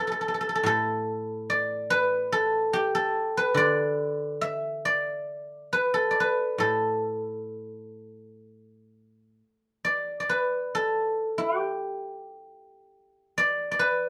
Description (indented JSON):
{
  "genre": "chinese traditional, Chinese solo plucked strings",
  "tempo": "61-74 BPM",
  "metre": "4/4",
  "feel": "rubato",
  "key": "A shang mode",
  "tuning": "A4 = 440 Hz",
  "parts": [
    { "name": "guzheng", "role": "solo", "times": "0.0-14.1 s", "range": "A2 to E5", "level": "-27 LUFS", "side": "equal", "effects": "none" }
  ],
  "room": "moderate studio reverb, RT60 0.7 s",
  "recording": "none",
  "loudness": "-27 LUFS",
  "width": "mono",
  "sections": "0.0-8.9 A section; 8.9-14.1 B section",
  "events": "none",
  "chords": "none",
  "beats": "0.24 1.07 | 1.90 2.72 3.54 4.39 | 5.25 6.13 7.04 7.99 | 8.94 9.83 10.73 11.62 | 12.49 13.36"
}